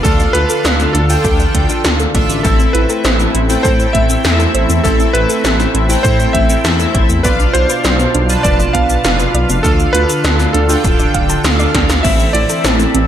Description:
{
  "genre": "synthwave",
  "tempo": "100 BPM",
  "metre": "4/4",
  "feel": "straight",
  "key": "A minor",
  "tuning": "A4 = 441 Hz",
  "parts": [
    { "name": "clear electric grand piano", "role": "melody", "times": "0.0-13.1 s", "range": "A4 to F5", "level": "-19 LUFS", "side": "right 1 dB", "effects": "tape echo, shimmer reverb" },
    { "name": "warm analog pad", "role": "sustained chords", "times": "0.0-13.1 s", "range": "B2 to A4", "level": "-21 LUFS", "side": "right 1 dB", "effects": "chorus, sidechain pumping, shimmer reverb" },
    { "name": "soft round pluck", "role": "arpeggios", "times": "0.0-13.0 s", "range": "A3 to A5", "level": "-23 LUFS", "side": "right 2 dB", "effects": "chorus, ping-pong delay, shimmer reverb" },
    { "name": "chorused polysynth", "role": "stabs", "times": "0.0-13.1 s", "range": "C4 to A5", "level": "-18 LUFS", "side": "left 1 dB", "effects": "ping-pong delay, shimmer reverb" },
    { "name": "dark detuned saw bass", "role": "bass", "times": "0.0-13.1 s", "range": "D1 to A2", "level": "-16 LUFS", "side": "equal", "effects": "none" },
    { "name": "80s electronic pad drums", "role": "drums", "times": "0.0-13.1 s", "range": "crash cymbal, hi-hat, shaker, snare drum", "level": "-18 LUFS", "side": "equal", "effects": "gated reverb" },
    { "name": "electronic kick drum", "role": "drums", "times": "0.0-12.2 s", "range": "none", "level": "-16 LUFS", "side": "equal", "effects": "none" }
  ],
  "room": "light reverb",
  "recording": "none",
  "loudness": "-10 LUFS",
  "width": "side -10 dB against mid",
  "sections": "0.0-13.1 A section",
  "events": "drum fill 11.7",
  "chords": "0.0 Dm; 2.4 Am; 7.2 Bdim; 9.6 Dm; 12.0 Am"
}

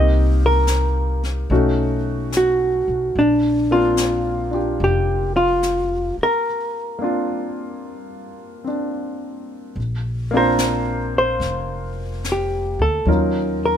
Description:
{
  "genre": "jazz ballad",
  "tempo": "73 BPM",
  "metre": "4/4",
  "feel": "swing 67% on 8ths",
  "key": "Bb major",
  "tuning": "A4 = 441 Hz",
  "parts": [
    { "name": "hollow-body jazz guitar", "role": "melody", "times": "0.0-13.8 s", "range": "D4 to Eb5", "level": "-19 LUFS", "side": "equal", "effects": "none" },
    { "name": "warm concert grand piano", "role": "accompaniment", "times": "0.0-13.8 s", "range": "Gb3 to C5", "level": "-24 LUFS", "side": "left 1 dB", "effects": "none" },
    { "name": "upright bass", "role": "bass", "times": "0.0-13.8 s", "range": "F1 to Eb2", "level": "-22 LUFS", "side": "equal", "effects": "none" },
    { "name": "jazz brush drum kit", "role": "drums", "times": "0.7-13.8 s", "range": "brushed snare drum, hi-hat, snare drum", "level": "-29 LUFS", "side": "left 4 dB", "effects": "none" }
  ],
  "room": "light reverb",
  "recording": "minimal, uncompressed stereo recording",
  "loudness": "-17 LUFS",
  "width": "side -9 dB against mid",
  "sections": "0.0-9.8 A section; 9.8-13.8 B section",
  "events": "break 6.5-9.8; hollow-body jazz guitar solo 9.8-13.8",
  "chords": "0.0 Cm7; 1.5 B9; 3.2 Bbadd9; 13.1 Ebm7"
}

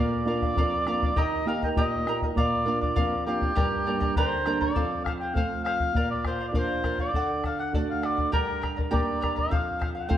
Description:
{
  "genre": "andean folk, Andean ensemble",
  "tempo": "101 BPM",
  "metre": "2/4",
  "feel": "straight",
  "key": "G minor",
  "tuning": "A4 = 443 Hz",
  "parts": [
    { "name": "warm oboe", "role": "melody", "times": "0.0-10.2 s", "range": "G4 to G5", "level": "-29 LUFS", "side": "equal", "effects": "none" },
    { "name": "charango", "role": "accompaniment", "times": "0.0-10.2 s", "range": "G4 to Bb5", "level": "-32 LUFS", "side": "left 1 dB", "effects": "none" },
    { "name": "flamenco guitar", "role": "accompaniment", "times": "0.0-10.2 s", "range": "F2 to G4", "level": "-30 LUFS", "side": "right 3 dB", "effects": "none" },
    { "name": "bombo", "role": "percussion", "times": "0.4-10.2 s", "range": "none", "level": "-29 LUFS", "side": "left 1 dB", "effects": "none" }
  ],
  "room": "moderate recital hall reverb, RT60 1.4 s",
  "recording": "none",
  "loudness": "-24 LUFS",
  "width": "side -11 dB against mid",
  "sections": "0.0-4.8 A section; 4.8-10.2 B section",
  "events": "none",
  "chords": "0.0 Bb; 1.2 Eb; 2.4 Bb; 3.6 Gm; 4.8 F; 6.0 Bb; 7.1 D; 8.3 Gm; 9.5 F"
}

